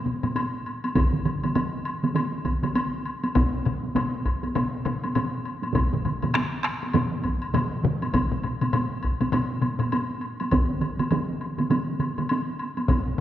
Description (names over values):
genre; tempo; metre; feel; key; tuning
japanese traditional, taiko drum ensemble; 100 BPM; 4/4; swing 60% on 16ths; none; none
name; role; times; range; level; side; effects
taiko ensemble; percussion; 0.1-13.1 s; none; -28 LUFS; right 1 dB; none
taiko ensemble; percussion; 0.1-13.2 s; none; -28 LUFS; left 3 dB; none
woodblock; percussion; 0.2-13.1 s; none; -32 LUFS; left 2 dB; none
taiko ensemble; percussion; 0.9-12.3 s; none; -28 LUFS; right 3 dB; none
taiko ensemble; percussion; 1.0-13.1 s; none; -28 LUFS; equal; none
room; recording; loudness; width
wet concert hall reverb, RT60 1.9 s; worn, warbling old tape, cassette tape, warbly pitch drift; -23 LUFS; side -12 dB against mid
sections
0.0-13.2 A section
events
none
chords
none